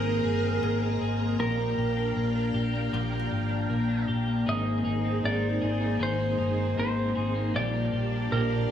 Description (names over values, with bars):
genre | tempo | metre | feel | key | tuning
dream pop | 78 BPM | 4/4 | straight | Ab lydian | A4 = 439 Hz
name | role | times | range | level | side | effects
clean lap steel guitar | melody | 0.0-8.7 s | Bb4 to Eb5 | -32 LUFS | right 2 dB | digital delay
string machine, full ensemble | sustained chords | 0.0-8.7 s | Eb4 to Bb5 | -34 LUFS | right 3 dB | phaser, ensemble chorus
twelve-string electric guitar | arpeggios | 0.0-8.7 s | Eb3 to Ab4 | -29 LUFS | left 3 dB | wide subtle chorus, digital delay
vintage muted fingered electric bass | bass | 0.0-8.7 s | G1 to Bb1 | -30 LUFS | equal | none
koto | texture | 0.0-5.0 s | G4 to Bb4 | -43 LUFS | right 1 dB | digital delay
semi-hollow electric guitar | accompaniment | 4.5-8.7 s | Bb2 to Bb4 | -34 LUFS | right 3 dB | tremolo, wide subtle chorus
room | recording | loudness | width
wet recital hall reverb, RT60 1.4 s | small room ambience | -25 LUFS | side -9 dB against mid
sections
0.0-8.7 A section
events
none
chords
0.0 Abadd9; 1.4 Bb6; 4.5 Abadd9; 7.5 Bb6